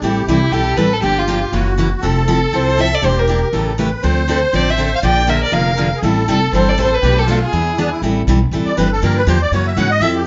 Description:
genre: acoustic string swing (jazz manouche)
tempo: 240 BPM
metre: 4/4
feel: swing 56% on 8ths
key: A minor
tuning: A4 = 441 Hz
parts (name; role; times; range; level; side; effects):
- musette accordion; second line; 0.0-10.3 s; D4 to F#5; -23 LUFS; equal; none
- picked steel-string acoustic guitar; accompaniment; 0.0-10.2 s; B2 to A4; -21 LUFS; equal; none
- upright bass; bass; 0.0-10.2 s; E1 to G#2; -20 LUFS; equal; none
- warm violin; melody; 0.3-7.9 s; E4 to G5; -20 LUFS; equal; none
room: moderate club reverb, RT60 0.8 s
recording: nothing above 7.6 kHz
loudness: -15 LUFS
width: mono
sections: 0.0-8.0 A section; 8.0-10.3 B section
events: accordion solo 8.0-10.3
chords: 0.0 Am7; 1.0 Gm7; 1.5 F#7; 2.0 Fmaj7; 3.0 Em7b5; 3.5 A7; 4.0 Dm9; 5.0 Bb6; 6.0 Am7; 7.0 Bm7b5; 7.5 E7; 8.0 Am7; 9.0 Gm7; 9.5 F#9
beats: | 0.02 0.27 0.52 0.78 | 1.02 1.28 1.53 1.78 | 2.03 2.28 2.53 2.78 | 3.03 3.28 3.53 3.78 | 4.03 4.28 4.53 4.78 | 5.03 5.28 5.53 5.78 | 6.03 6.28 6.53 6.78 | 7.03 7.28 7.52 7.77 | 8.02 8.27 8.52 8.77 | 9.02 9.27 9.52 9.77 | 10.02

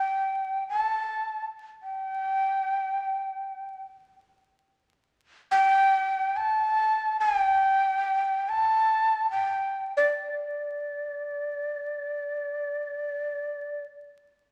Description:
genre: japanese traditional, Japanese chamber music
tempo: free time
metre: none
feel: none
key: unclear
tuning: A4 = 435 Hz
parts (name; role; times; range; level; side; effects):
- breathy shakuhachi; solo; 0.0-13.8 s; D5 to A5; -27 LUFS; equal; none
room: moderate recital hall reverb, RT60 1.7 s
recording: vinyl crackle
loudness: -27 LUFS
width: mono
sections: 0.0-14.5 A section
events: none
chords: none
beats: free time

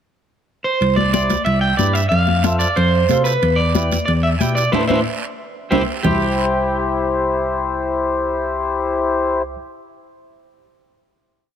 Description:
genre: latin, cumbia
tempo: 183 BPM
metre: 4/4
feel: straight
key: C major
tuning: A4 = 440 Hz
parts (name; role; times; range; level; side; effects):
- electric guitar at the edge of break-up; melody; 0.6-9.5 s; G4 to G5; -19 LUFS; right 2 dB; spring reverb, slapback echo
- tine electric piano; bass; 0.8-9.5 s; C2 to C3; -20 LUFS; equal; none
- congas; percussion; 0.8-6.1 s; none; -23 LUFS; left 6 dB; none
- guiro; percussion; 0.8-6.1 s; none; -31 LUFS; right 6 dB; none
- timbales; percussion; 0.8-6.1 s; none; -26 LUFS; right 11 dB; none
- mellow accordion; accompaniment; 1.1-9.4 s; E4 to C5; -21 LUFS; left 3 dB; none
room: light reverb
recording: none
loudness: -16 LUFS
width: side -9 dB against mid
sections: 0.0-0.8 pickup bar; 0.8-6.0 A section; 6.0-8.7 final chord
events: band accent 4.7-6.0; drum fill 5.4-6.0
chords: 0.0 N.C.; 0.8 Cadd9; 2.1 F; 3.4 Em; 4.7 Amadd9; 5.4 C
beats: 0.16 0.48 | 0.81 1.14 1.46 1.79 | 2.12 2.44 2.77 3.10 | 3.42 3.75 4.08 4.41 | 4.73 5.06 5.39 5.72 | 6.04 6.37 6.70 7.03 | 7.35 7.68 8.01 8.33

